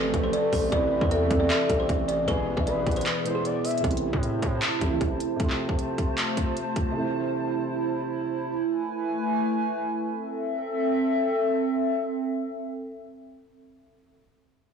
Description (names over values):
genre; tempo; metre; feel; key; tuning
hip hop, trap; 154 BPM; 4/4; half-time; A harmonic minor; A4 = 443 Hz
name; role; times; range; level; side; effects
buzzing kalimba; melody; 0.0-3.8 s; G#4 to E5; -29 LUFS; left 1 dB; low-pass filter, digital delay
gliding portamento lead; second line; 0.0-3.8 s; G#4 to E5; -30 LUFS; left 3 dB; chorus, digital delay
dark grand piano; accompaniment; 0.0-8.5 s; B2 to F4; -31 LUFS; right 2 dB; low-pass filter
hollow soft pad; sustained chords; 0.0-13.9 s; E3 to A5; -28 LUFS; right 1 dB; chorus
distorted 808-style bass; bass; 0.0-5.2 s; G#1 to A2; -29 LUFS; equal; distortion
trap drum kit; drums; 0.1-6.9 s; handclaps, hi-hat, kick drum; -28 LUFS; equal; none
room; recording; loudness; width
moderate digital room reverb, RT60 1.2 s; blown-out, overdriven recording, overdrive, small room ambience; -24 LUFS; side -6 dB against mid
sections
0.0-3.8 A section; 3.8-10.1 B section; 10.1-13.2 C section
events
kick muted 3.1-3.8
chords
0.0 F/A; 0.7 Am; 2.3 E/A; 3.8 Am; 5.4 F; 7.0 Am; 8.5 E/A; 10.1 Am